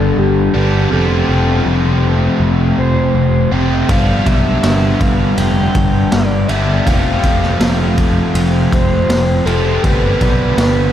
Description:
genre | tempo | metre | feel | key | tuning
rock, shoegaze and dream pop | 81 BPM | 4/4 | straight | unclear | A4 = 437 Hz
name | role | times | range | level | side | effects
reedy FM lead | melody | 0.0-10.9 s | G4 to G5 | -20 LUFS | equal | chorus, tape echo
overdriven electric guitar | riff | 0.0-10.9 s | F2 to D4 | -15 LUFS | left 1 dB | wide subtle chorus
picked electric bass | bass | 0.0-10.9 s | F1 to B1 | -16 LUFS | equal | none
raw garage drum kit | drums | 3.9-10.8 s | kick drum, ride cymbal, snare drum | -17 LUFS | equal | none
room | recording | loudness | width
wet cathedral reverb, RT60 5.4 s | dreamy mix soaked in reverb | -11 LUFS | side -10 dB against mid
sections
0.0-10.9 A section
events
none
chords
0.0 Gadd9; 0.9 F; 3.9 G; 6.9 F; 9.8 G

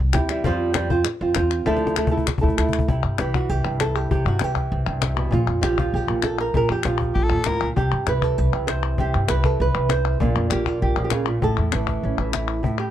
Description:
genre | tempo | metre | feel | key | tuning
flamenco | 197 BPM | 4/4 | straight | unclear | A4 = 438 Hz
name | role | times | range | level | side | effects
upright bass | bass | 0.0-12.6 s | A1 to G2 | -23 LUFS | equal | none
flamenco guitar | melody | 0.1-12.9 s | G2 to C5 | -23 LUFS | right 2 dB | none
cajon | percussion | 0.1-12.8 s | none | -26 LUFS | left 3 dB | none
palmas hand claps | percussion | 0.1-12.9 s | none | -28 LUFS | left 15 dB | none
growling soprano saxophone | second line | 7.1-7.7 s | G4 to Bb4 | -26 LUFS | left 4 dB | none
room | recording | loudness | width
small room ambience | dry, close 1970s-style studio recording | -19 LUFS | side -11 dB against mid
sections
0.0-2.9 A section; 2.9-12.6 B section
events
drum fill 1.7-2.9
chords
0.4 Fsus2; 1.7 Dmadd9; 2.9 C; 5.3 Bb5; 7.8 C; 10.2 Bb; 11.4 A

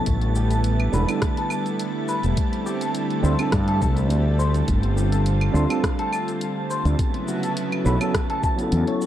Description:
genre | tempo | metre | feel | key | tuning
sunset chillout | 104 BPM | 4/4 | swing 53% on 16ths | A minor | A4 = 440 Hz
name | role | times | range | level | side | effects
overdriven tine electric piano | accompaniment | 0.0-9.1 s | F#3 to A4 | -28 LUFS | moving between left 5 dB and right 6 dB | auto-pan, tape echo
lush unison pad | sustained chords | 0.0-9.1 s | C#3 to F4 | -26 LUFS | equal | chorus
wind-like tuned noise texture | texture | 0.0-9.1 s | A5 to A6 | -36 LUFS | right 7 dB | built-in reverb
fretless electric bass | bass | 0.1-8.8 s | E1 to G2 | -20 LUFS | equal | tube saturation
deep house drum kit | drums | 0.1-9.1 s | claves, hi-hat, rim click, shaker | -31 LUFS | equal | studio reverb
electronic kick drum | drums | 0.1-8.6 s | none | -25 LUFS | equal | studio reverb
clean electric guitar | arpeggios | 0.4-9.1 s | F#4 to A5 | -30 LUFS | left 1 dB | phaser, tape echo
room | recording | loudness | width
light reverb, digital ambience | dry, gritty hardware recording | -20 LUFS | side -12 dB against mid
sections
0.0-9.1 A section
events
none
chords
0.1 A9sus4; 2.4 D9sus4; 4.7 G9sus4; 7.0 B9sus4

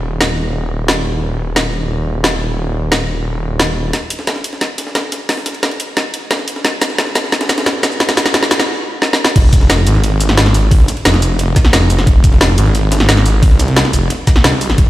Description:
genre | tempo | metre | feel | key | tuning
dark technical drum and bass | 177 BPM | 4/4 | straight | F minor | A4 = 440 Hz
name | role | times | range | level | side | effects
snarling distorted saw bass | bass | 0.0-3.9, 9.4-14.9 s | Eb1 to C2 | -14 LUFS | equal | distortion, tube saturation, sidechain pumping
drum and bass drum kit | drums | 0.2-14.8 s | crash cymbal, hi-hat, shaker, snare drum | -15 LUFS | equal | overdrive
breakbeat sampler-style drum kit | drums | 3.9-14.9 s | hi-hat, ride cymbal, snare drum | -23 LUFS | equal | high-pass filter on cymbals, high-pass filter on snare, high-pass filter on hats
electronic kick drum | drums | 3.9-14.8 s | none | -10 LUFS | equal | overdrive, high-pass filter on kick
room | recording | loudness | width
light reverb | played on a big sound system in a bare room, stone room reverb | -11 LUFS | side -15 dB against mid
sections
0.0-3.9 A section; 3.9-9.4 B section; 9.4-14.9 C section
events
build-up 3.9-9.4; drum fill 3.9-8.7, 9.0-9.4; stop 8.7-9.4; drop 9.4-14.9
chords
none

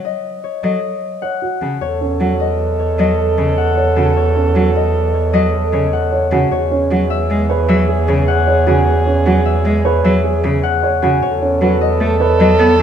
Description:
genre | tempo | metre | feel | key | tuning
classical, minimalist pattern music | 153 BPM | 6/4 | straight | unclear | A4 = 440 Hz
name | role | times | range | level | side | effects
concert harp | melody | 0.0-12.8 s | B4 to A5 | -20 LUFS | left 10 dB | none
warm cello | accompaniment | 0.6-12.8 s | C#3 to B3 | -19 LUFS | equal | none
dark baby grand piano | arpeggios | 0.6-12.8 s | C#4 to C#5 | -20 LUFS | right 5 dB | none
warm soprano saxophone | second line | 1.8-12.8 s | G#4 to A4 | -19 LUFS | right 3 dB | none
warm double bass | bass | 1.8-12.8 s | E2 | -17 LUFS | right 2 dB | none
room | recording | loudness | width
moderate recital hall reverb, RT60 1.5 s | dark, warm production | -13 LUFS | side -8 dB against mid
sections
0.0-1.8 A section; 1.8-12.8 B section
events
none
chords
0.0 F#m6/C#; 1.8 F#m6; 6.5 Eadd9; 11.2 B7/E

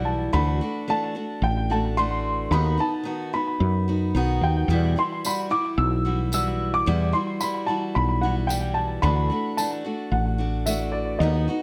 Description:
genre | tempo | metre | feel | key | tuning
acoustic folk duo or small band | 110 BPM | 4/4 | straight | E minor | A4 = 439 Hz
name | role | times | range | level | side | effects
dark upright piano | melody | 0.0-11.6 s | D5 to E6 | -29 LUFS | equal | slapback echo
picked steel-string acoustic guitar | accompaniment | 0.0-11.6 s | E2 to F#4 | -30 LUFS | equal | none
woody fretless electric bass | bass | 0.0-11.5 s | A1 to F#2 | -26 LUFS | equal | none
tambourine | percussion | 5.2-10.8 s | none | -35 LUFS | equal | none
room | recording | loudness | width
little or no reverb | close, detailed microphones | -24 LUFS | mono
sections
0.0-11.6 A section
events
none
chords
0.3 Dadd9; 2.5 B/D#; 4.7 Emadd9; 9.0 Dadd9

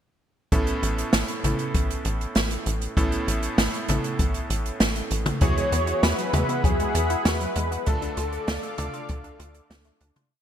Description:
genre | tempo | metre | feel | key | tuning
synthwave | 98 BPM | 4/4 | straight | A major | A4 = 440 Hz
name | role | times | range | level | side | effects
clear electric grand piano | stabs | 0.5-10.3 s | A2 to A4 | -30 LUFS | right 1 dB | digital delay
tight sequencer bass | bass | 0.5-10.1 s | A1 to E2 | -27 LUFS | equal | none
kick drum | drums | 0.5-9.2 s | none | -25 LUFS | equal | none
open jazz drum kit | drums | 0.5-10.3 s | hi-hat, snare drum, toms | -26 LUFS | right 1 dB | none
wide unison lead | melody | 5.4-9.7 s | G#4 to C#5 | -28 LUFS | equal | analog chorus, ping-pong delay
lush unison pad | sustained chords | 5.9-10.3 s | G#4 to D6 | -32 LUFS | left 1 dB | chorus, sidechain pumping
analog pluck | arpeggios | 5.4-10.3 s | F#3 to D5 | -34 LUFS | left 4 dB | chorus, digital delay
room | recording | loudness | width
moderate lush hall reverb, RT60 2.2 s | bright 1980s-style digital production | -22 LUFS | side -9 dB against mid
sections
0.5-10.3 verse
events
fade-out 7.0-10.3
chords
0.5 Aadd9; 5.4 Eadd9; 7.9 Dm

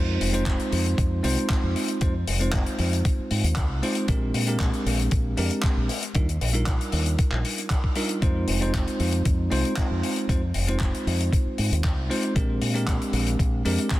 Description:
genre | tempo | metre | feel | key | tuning
nu-disco, nu disco | 116 BPM | 4/4 | straight | F dorian | A4 = 441 Hz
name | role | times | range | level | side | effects
bell-like tine electric piano | accompaniment | 0.0-14.0 s | G3 to C5 | -27 LUFS | right 1 dB | sidechain pumping, tape echo
fingered electric bass with an envelope filter | bass | 0.0-13.8 s | F1 to Bb2 | -25 LUFS | equal | none
damped 70s drum kit | drums | 0.2-14.0 s | handclaps, hi-hat | -31 LUFS | left 3 dB | none
electronic kick drum | drums | 0.5-14.0 s | none | -24 LUFS | equal | none
room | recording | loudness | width
light reverb, studio reverb | dense, heavily limited modern master | -22 LUFS | side -16 dB against mid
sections
0.0-14.0 A section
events
none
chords
0.0 Fm7; 4.1 Bb13; 5.9 Ebmaj9; 8.2 Fm7; 12.4 Bb13

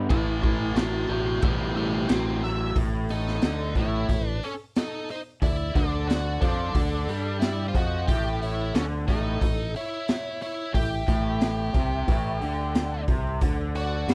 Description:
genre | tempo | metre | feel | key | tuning
blues rock power trio and southern rock | 90 BPM | 4/4 | straight | A mixolydian | A4 = 440 Hz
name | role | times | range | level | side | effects
raw garage guitar | riff | 0.0-14.1 s | A2 to G3 | -32 LUFS | equal | overdrive
fingered electric bass | bass | 0.0-14.1 s | A1 to G2 | -32 LUFS | equal | none
octave-fuzz lead guitar | melody | 0.1-14.1 s | C#4 to A5 | -35 LUFS | equal | distortion, slapback echo
raw garage drum kit | drums | 0.1-14.1 s | crash cymbal, hi-hat, kick drum, snare drum | -29 LUFS | equal | none
biting lead guitar | second line | 3.1-14.1 s | A4 to E5 | -39 LUFS | equal | overdrive
room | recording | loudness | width
little or no reverb | none | -26 LUFS | mono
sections
0.0-2.8 A section; 2.8-14.1 B section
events
lead electric guitar solo 0.0-2.8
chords
0.1 A7; 2.8 A; 5.4 D5; 8.1 A7; 13.4 D

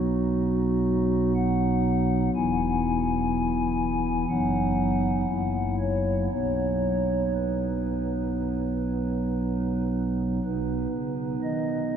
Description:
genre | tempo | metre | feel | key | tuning
classical, chorale-style piece for pipe organ | 57-63 BPM | 4/4 | rubato | B major | A4 = 440 Hz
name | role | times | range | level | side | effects
pipe organ, stopped flute | solo | 0.0-12.0 s | E1 to G#5 | -23 LUFS | equal | none
room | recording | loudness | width
wet cathedral reverb, RT60 7.0 s | dark, warm production | -23 LUFS | side -8 dB against mid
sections
0.0-10.4 A section; 10.4-12.0 B section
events
none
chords
0.0 B; 2.3 E; 4.3 B/F#; 5.3 F#7; 6.3 B

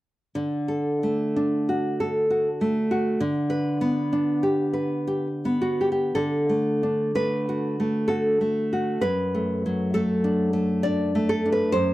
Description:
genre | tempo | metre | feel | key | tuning
romantic piece for solo classical guitar | 52-68 BPM | 3/4 | rubato | D major | A4 = 440 Hz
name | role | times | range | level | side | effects
nylon-string guitar | solo | 0.4-11.9 s | F#2 to D5 | -22 LUFS | equal | none
room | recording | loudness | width
studio reverb | dry, close 1970s-style studio recording | -22 LUFS | side -16 dB against mid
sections
0.3-6.2 A section; 6.2-11.9 B section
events
none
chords
0.3 D; 3.2 G/D; 6.2 D; 9.0 D/F#

